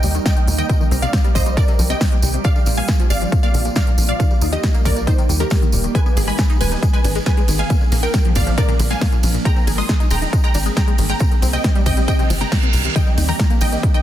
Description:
uplifting trance; 137 BPM; 4/4; straight; Eb major; A4 = 440 Hz
wide unison pluck; melody; 0.0-14.0 s; Eb4 to Eb6; -25 LUFS; right 1 dB; vintage 12-bit sampler grit, sidechain pumping, dub echo
tight sequenced synth; arpeggios; 0.0-14.0 s; F2 to Ab4; -27 LUFS; left 6 dB; chorus, phaser, sidechain pumping, dub echo
tight sequencer bass; bass; 0.0-13.8 s; Eb1 to Eb2; -20 LUFS; equal; sidechain pumping
big-room dance drum kit; drums; 0.0-14.0 s; hi-hat, ride cymbal, snare drum; -26 LUFS; equal; overdrive, sidechain pumping on hats, sidechain pumping on cymbals
tambourine; percussion; 0.0-14.0 s; -31 LUFS; right 4 dB
impact and reverse cymbal; sound effects; 0.0-0.7, 12.2-13.0 s; -27 LUFS; right 6 dB
electronic kick drum; drums; 0.3-13.9 s; -16 LUFS; equal; overdrive
light reverb, digital ambience; dense, heavily limited modern master; -14 LUFS; side -12 dB against mid
0.0-14.0 A section
impact 0.0-0.7; reverse cymbal 12.2-13.0
0.0 Eb; 0.7 Cm; 2.4 Bb; 4.2 Eb; 5.9 Abm; 7.7 Bb; 9.5 Abadd9; 11.2 Cm; 13.0 Eb

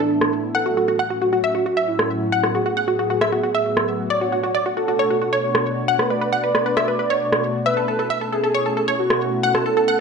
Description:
uplifting trance; 135 BPM; 4/4; straight; F# minor; A4 = 441 Hz
wide unison pluck; melody; 0.0-10.0 s; F#4 to F#5; -21 LUFS; moving between left 5 dB and right 6 dB; auto-pan, digital delay
plucky unison lead; second line; 0.0-10.0 s; F#5 to F#6; -31 LUFS; left 1 dB; digital delay
warm velvety synth lead; second line; 0.0-10.0 s; D4 to D5; -23 LUFS; right 2 dB; chorus, digital delay
electronic rim click; drums; 0.2-9.6 s; -22 LUFS; right 1 dB; low-pass filter on snare, low-pass filter on room
wet digital room reverb, RT60 1.1 s, digital ambience; nothing above 10.9 kHz; -18 LUFS; side -5 dB against mid
0.0-10.0 A section
filter sweep on digital synth lead 0.0-10.0
0.0 Esus4; 0.5 F#m; 4.1 Bm7; 7.7 Aadd9

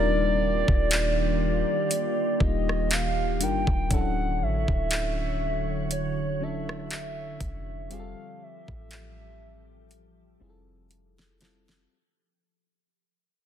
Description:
contemporary R&B; 60 BPM; 4/4; swing 54% on 16ths; A4 = 441 Hz
hollow clarinet-like synth lead; melody; 0.0-10.4 s; C#5 to G5; -30 LUFS; right 2 dB; chorus, ping-pong delay
mellow FM electric piano; accompaniment; 0.0-11.9 s; E3 to Bb4; -32 LUFS; left 5 dB; chorus
glassy FM pad; sustained chords; 0.0-11.9 s; D3 to C#5; -32 LUFS; right 1 dB; ensemble chorus, built-in reverb
soft 808-style bass; bass; 0.0-11.9 s; D1 to A1; -30 LUFS; equal
smooth R&B drum kit; drums; 0.7-11.9 s; handclaps, hi-hat, kick drum, rim click, snare drum; -28 LUFS; equal
little or no reverb; dense, heavily limited modern master; -24 LUFS; side -9 dB against mid
0.0-11.9 A section
fade-out 0.0-11.9; drum fill 9.9-11.9
0.0 Ebmaj9; 3.9 Dmaj9; 7.9 Fmaj9

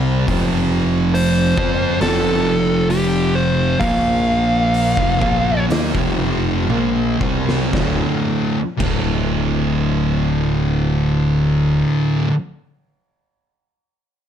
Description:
stoner and doom metal; 56-70 BPM; 4/4; straight; D minor; A4 = 440 Hz
thick fuzz guitar; riff; 0.0-12.3 s; D2 to F4; -20 LUFS; left 7 dB; distortion
thick fuzz guitar; riff; 0.0-12.3 s; D2 to F4; -20 LUFS; right 8 dB; distortion
growling fingered electric bass; bass; 0.0-11.8 s; D1 to F2; -23 LUFS; equal; overdrive, tube saturation
oversized low-tuned drum kit; drums; 0.3-9.1 s; crash cymbal, hi-hat, kick drum, snare drum, toms; -24 LUFS; equal
fuzz lead guitar; melody; 1.1-5.6 s; G4 to F5; -20 LUFS; equal; distortion
light reverb, small room ambience; -15 LUFS; side -9 dB against mid
0.0-7.7 A section; 7.7-12.0 B section
lead electric guitar solo 0.0-7.7; slowing down 0.3-7.7; drum fill 6.7-7.7
0.3 F5; 3.8 Bb5; 5.0 F5; 7.7 D5

